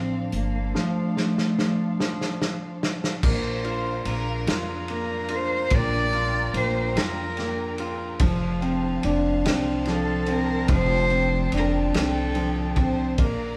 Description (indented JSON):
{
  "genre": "six-eight pop ballad",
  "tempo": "48 BPM (dotted quarters)",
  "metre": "6/8",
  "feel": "straight",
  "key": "Bb major",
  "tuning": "A4 = 438 Hz",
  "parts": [
    { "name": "dark cello", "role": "melody", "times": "0.0-12.9 s", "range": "A3 to D5", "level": "-29 LUFS", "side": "equal", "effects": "none" },
    { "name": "clear grand piano", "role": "accompaniment", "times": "0.0-13.6 s", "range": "F3 to F4", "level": "-29 LUFS", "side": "equal", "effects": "none" },
    { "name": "muted studio string section", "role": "sustained chords", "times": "0.0-13.6 s", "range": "D3 to Bb5", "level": "-38 LUFS", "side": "equal", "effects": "none" },
    { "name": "upright bass", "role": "bass", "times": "0.0-13.6 s", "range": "F1 to F2", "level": "-31 LUFS", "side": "equal", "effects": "none" },
    { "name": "loose indie drum kit", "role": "drums", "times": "0.3-13.4 s", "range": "crash cymbal, hi-hat, kick drum, ride cymbal, snare drum", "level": "-30 LUFS", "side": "equal", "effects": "none" },
    { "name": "warm studio violin section", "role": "second line", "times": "3.2-4.7, 12.8-13.6 s", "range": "Bb4 to D5", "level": "-38 LUFS", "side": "equal", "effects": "none" }
  ],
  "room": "wet stone room reverb, RT60 1.1 s",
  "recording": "band playing live in one room",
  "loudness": "-24 LUFS",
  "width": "mono",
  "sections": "0.0-3.2 A section; 3.2-13.6 B section",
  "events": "drum fill 0.7-3.2",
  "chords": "0.0 F6; 3.2 Bb; 8.2 F6"
}